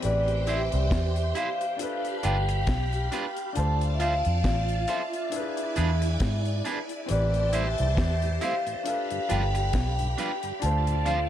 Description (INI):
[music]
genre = lovers rock reggae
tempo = 68 BPM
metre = 4/4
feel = swing 57% on 16ths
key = A minor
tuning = A4 = 436 Hz
[part]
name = vibraphone with soft mallets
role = melody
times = 0.0-11.3 s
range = D5 to A5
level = -30 LUFS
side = equal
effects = tape echo
[part]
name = phased string machine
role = second line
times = 0.0-11.3 s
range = E4 to B5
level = -34 LUFS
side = right 2 dB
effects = ensemble chorus, phaser
[part]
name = clear grand piano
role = accompaniment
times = 0.0-11.3 s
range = E3 to C5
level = -36 LUFS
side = left 6 dB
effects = dub echo
[part]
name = vintage muted fingered electric bass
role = bass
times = 0.0-11.3 s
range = G1 to G#2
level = -26 LUFS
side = equal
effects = none
[part]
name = deep reggae drum kit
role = drums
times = 0.0-11.3 s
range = hi-hat, kick drum, snare drum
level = -31 LUFS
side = equal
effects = dub echo
[part]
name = electric guitar at the edge of break-up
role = stabs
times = 0.5-11.2 s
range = D4 to C5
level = -35 LUFS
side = right 4 dB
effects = none
[part]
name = mellow tonewheel organ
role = accompaniment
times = 7.3-11.2 s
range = D2 to D4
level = -40 LUFS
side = right 5 dB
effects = slow rotary speaker, dub echo
[sound]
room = little or no reverb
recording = none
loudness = -24 LUFS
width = side -11 dB against mid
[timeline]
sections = 0.0-11.3 A section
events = none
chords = 0.0 Am7; 1.8 G7; 3.6 Dm7; 5.3 E7; 7.1 Am7; 8.9 G7; 10.6 Dm7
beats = | 0.03 0.91 1.79 2.68 | 3.56 4.44 5.33 6.21 | 7.09 7.97 8.85 9.73 | 10.62